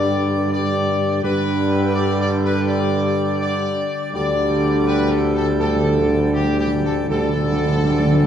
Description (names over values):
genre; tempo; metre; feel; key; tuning
classical; 82 BPM; 4/4; straight; unclear; A4 = 440 Hz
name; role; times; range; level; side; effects
dark trumpet section; melody; 0.0-8.3 s; G4 to D5; -24 LUFS; left 2 dB; none
mellow French horn section; sustained chords; 0.0-8.3 s; D4 to G4; -25 LUFS; left 6 dB; none
pipe organ, plenum; sustained chords; 0.0-8.3 s; D3 to D5; -28 LUFS; equal; none
warm trombone section; sustained chords; 0.0-8.3 s; D3 to G3; -26 LUFS; right 2 dB; none
mellow tuba; bass; 0.0-8.3 s; D2 to G2; -20 LUFS; right 2 dB; none
timpani; percussion; 4.1-8.3 s; D3; -24 LUFS; right 1 dB; none
room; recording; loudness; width
wet scoring stage reverb, RT60 1.6 s; dark, warm production; -17 LUFS; side -9 dB against mid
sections
0.0-8.3 A section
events
timpani fill 4.1-8.3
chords
0.0 G; 4.1 Dsus4